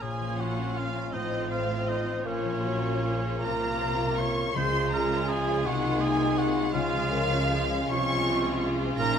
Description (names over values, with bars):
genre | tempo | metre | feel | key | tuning
classical, slow romantic movement for symphony orchestra | 53 BPM (dotted quarters) | 6/8 | uneven beats, rubato | Bb minor | A4 = 435 Hz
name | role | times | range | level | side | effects
warm symphonic violin section | melody | 0.0-9.2 s | Db5 to Db6 | -33 LUFS | left 1 dB | none
mellow clarinet | second line | 0.0-9.2 s | Db4 to F4 | -37 LUFS | left 1 dB | none
mellow hollow large flute ensemble | second line | 0.0-9.2 s | Db5 to Db6 | -38 LUFS | left 2 dB | none
warm cor anglais | second line | 0.0-9.2 s | Db4 to Db5 | -34 LUFS | right 3 dB | none
warm symphonic violin section | second line | 0.0-9.2 s | C4 to Ab4 | -37 LUFS | equal | none
rich symphonic viola section | accompaniment | 0.0-9.2 s | Eb3 to Db4 | -37 LUFS | right 2 dB | none
warm bassoon | accompaniment | 0.0-9.2 s | Ab3 to Db4 | -38 LUFS | right 2 dB | none
concert harp | arpeggios | 0.0-9.2 s | A2 to Ab5 | -35 LUFS | left 8 dB | none
rich symphonic cello section | bass | 0.0-9.2 s | A2 to Db3 | -35 LUFS | right 4 dB | none
warm symphonic double bass section | bass | 0.0-9.2 s | A1 to Db2 | -35 LUFS | right 4 dB | none
mellow French horn section | sustained chords | 1.1-9.2 s | Eb4 to C5 | -32 LUFS | left 3 dB | none
timpani | percussion | 4.6-5.6 s | Db3 | -36 LUFS | right 3 dB | none
room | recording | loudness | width
moderate scoring stage reverb, RT60 2.0 s | none | -25 LUFS | side -7 dB against mid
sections
0.0-9.2 A section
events
none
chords
0.0 Bbm; 1.1 F/A; 2.2 Bbm; 4.6 Db; 5.7 Ab7/C; 6.7 Db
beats
| 0.01 1.14 | 2.25 3.44 | 4.56 5.66 | 6.74 7.90 | 8.99